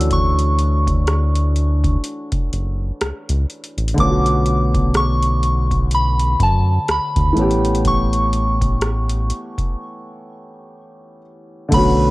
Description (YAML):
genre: contemporary R&B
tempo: 62 BPM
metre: 4/4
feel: swing 58% on 16ths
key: unclear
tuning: A4 = 438 Hz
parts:
  - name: soft synth bell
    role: melody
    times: 0.0-12.1 s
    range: A5 to E6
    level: -22 LUFS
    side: equal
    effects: chorus, cassette tape, tape echo
  - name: dark concert grand piano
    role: accompaniment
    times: 0.0-12.1 s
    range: D3 to G4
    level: -22 LUFS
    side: equal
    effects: cassette tape
  - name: round analog bass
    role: bass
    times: 0.0-12.1 s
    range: F#1 to F#2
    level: -18 LUFS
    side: equal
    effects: none
  - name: booming analog drum machine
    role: drums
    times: 0.0-12.0 s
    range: crash cymbal, hi-hat, kick drum, rim click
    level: -21 LUFS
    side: equal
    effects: cassette tape
room: little or no reverb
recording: home recording on cassette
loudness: -15 LUFS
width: side -20 dB against mid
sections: 0.0-11.7 A section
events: break 9.8-11.7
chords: 0.0 Dmaj9; 4.0 Bm7; 7.4 A7